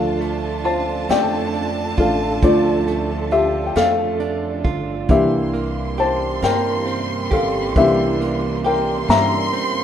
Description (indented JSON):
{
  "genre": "six-eight pop ballad",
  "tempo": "45 BPM (dotted quarters)",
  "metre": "6/8",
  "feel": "straight",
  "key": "D minor",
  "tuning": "A4 = 440 Hz",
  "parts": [
    { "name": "warm studio violin section", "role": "second line", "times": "0.0-9.8 s", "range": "A5 to C6", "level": "-28 LUFS", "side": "right 2 dB", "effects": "none" },
    { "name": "felt-muted upright piano", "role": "accompaniment", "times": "0.0-9.8 s", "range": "E3 to Bb5", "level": "-19 LUFS", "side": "left 2 dB", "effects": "none" },
    { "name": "clear studio string section", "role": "sustained chords", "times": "0.0-9.8 s", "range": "C3 to A4", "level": "-30 LUFS", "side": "right 2 dB", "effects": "none" },
    { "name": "direct-recorded clean electric guitar", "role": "arpeggios", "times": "0.0-9.8 s", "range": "E3 to G4", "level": "-25 LUFS", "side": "right 8 dB", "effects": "none" },
    { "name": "upright bass", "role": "bass", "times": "0.0-9.8 s", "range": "G1 to G2", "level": "-28 LUFS", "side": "right 1 dB", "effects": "none" },
    { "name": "vintage brush drum kit", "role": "drums", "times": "0.2-9.7 s", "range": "hi-hat, kick drum, snare drum", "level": "-21 LUFS", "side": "right 1 dB", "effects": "none" }
  ],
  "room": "light reverb, studio ambience",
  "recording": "rough home demo mix",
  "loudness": "-16 LUFS",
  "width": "side -9 dB against mid",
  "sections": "0.0-9.8 A section",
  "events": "felt piano solo 0.0-9.8",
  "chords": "0.0 Dm; 5.1 C7"
}